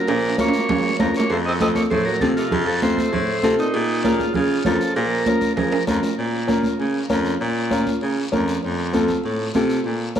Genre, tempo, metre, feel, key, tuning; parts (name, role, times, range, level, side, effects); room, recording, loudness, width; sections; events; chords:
latin, cumbia; 197 BPM; 4/4; straight; Bb harmonic minor; A4 = 440 Hz
combo organ; melody; 0.0-5.8 s; Eb4 to Eb5; -26 LUFS; equal; dub echo
raspy tenor saxophone; second line; 0.0-5.9 s; Bb2 to C4; -28 LUFS; right 3 dB; dub echo
raspy baritone saxophone; bass; 0.1-10.1 s; F2 to Db3; -24 LUFS; right 1 dB
cowbell and timbales; percussion; 0.1-6.1 s; -28 LUFS; right 4 dB; dub echo
guiro; percussion; 0.1-10.2 s; -36 LUFS; left 3 dB; dub echo
bright upright piano; accompaniment; 0.4-10.2 s; C4 to C5; -24 LUFS; left 3 dB; dub echo
congas; percussion; 0.4-10.2 s; -25 LUFS; right 2 dB; dub echo
moderate spring reverb, RT60 2.3 s; echo-heavy mix, cassette tape, small room ambience; -18 LUFS; side -9 dB against mid
0.0-6.2 A section; 6.2-10.2 B section
drum fill 0.1-1.3, 5.6-6.2
0.0 Bbm; 1.3 F; 3.7 Bbm; 8.6 F